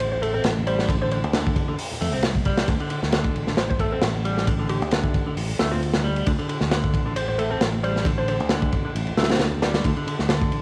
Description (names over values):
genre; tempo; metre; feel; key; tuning
breakbeat, breaks; 134 BPM; 4/4; swing 54% on 16ths; D minor; A4 = 440 Hz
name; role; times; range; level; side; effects
hollow square pluck; melody; 0.0-8.4 s; F4 to C5; -32 LUFS; equal; chorus, AM radio sound, analog delay
picked electric bass; bass; 0.0-10.6 s; A1 to F2; -29 LUFS; equal; none
crunchy breakbeat drum kit; drums; 0.0-10.6 s; hi-hat, kick drum, ride cymbal, snare drum; -26 LUFS; equal; cassette tape
congas; percussion; 0.1-10.3 s; none; -40 LUFS; equal; none
clean electric guitar; riff; 0.2-10.6 s; D3 to C4; -31 LUFS; equal; cassette tape, analog delay
room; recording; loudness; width
light reverb, small room ambience; home recording on cassette, vinyl crackle; -23 LUFS; mono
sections
0.0-10.6 A section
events
kick drops out 9.0-9.8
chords
0.0 D7(no3)